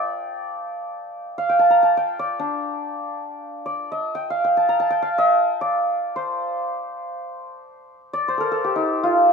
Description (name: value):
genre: Persian modal ensemble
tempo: free time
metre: none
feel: none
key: D dastgah shur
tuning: A4 = 439 Hz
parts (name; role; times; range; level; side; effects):
- santur; solo; 0.0-9.3 s; D4 to Bb5; -19 LUFS; equal; none
room: light reverb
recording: minimal, uncompressed stereo recording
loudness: -19 LUFS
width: side -5 dB against mid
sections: 0.0-3.4 A section; 3.4-9.3 A section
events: none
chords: none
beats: free time